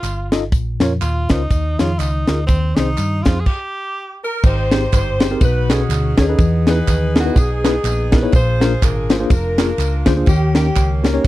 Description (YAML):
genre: uptempo gospel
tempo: 123 BPM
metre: 4/4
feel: swing 58% on 8ths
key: unclear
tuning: A4 = 437 Hz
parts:
  - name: bright tenor saxophone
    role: melody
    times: 0.0-4.2 s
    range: C4 to Ab4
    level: -25 LUFS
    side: equal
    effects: slapback echo
  - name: hollow-body short-scale fingered electric bass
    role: bass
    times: 0.0-11.3 s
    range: F1 to G2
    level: -19 LUFS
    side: equal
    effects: none
  - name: tight funk drum kit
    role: drums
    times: 0.0-11.3 s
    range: crash cymbal, hi-hat, kick drum, ride cymbal, snare drum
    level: -15 LUFS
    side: equal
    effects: none
  - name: handclaps and tambourine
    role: percussion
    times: 0.0-11.3 s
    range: none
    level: -31 LUFS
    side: right 4 dB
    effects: none
  - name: tine electric piano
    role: accompaniment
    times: 0.3-11.3 s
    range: Ab2 to Eb5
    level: -20 LUFS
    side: left 2 dB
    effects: medium stereo tremolo
  - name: warm saxophone section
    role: melody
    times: 4.2-11.3 s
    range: Bb3 to C5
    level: -22 LUFS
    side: equal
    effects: slapback echo
room: little or no reverb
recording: dry, close 1970s-style studio recording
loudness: -14 LUFS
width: side -16 dB against mid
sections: 0.0-4.4 A section; 4.4-11.3 B section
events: stop 3.5-4.4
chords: 0.0 F7; 0.5 Bbm; 1.5 Eb9sus4; 2.5 Ab; 3.5 N.C.; 4.4 Abmaj7; 5.4 B13; 6.4 Emaj7; 8.3 Bb7; 10.3 Eb7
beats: 0.03 | 0.52 1.01 1.50 1.99 | 2.48 2.97 3.46 3.95 | 4.44 4.92 5.41 5.90 | 6.38 6.87 7.36 7.84 | 8.33 8.82 9.30 9.79 | 10.28 10.76 11.25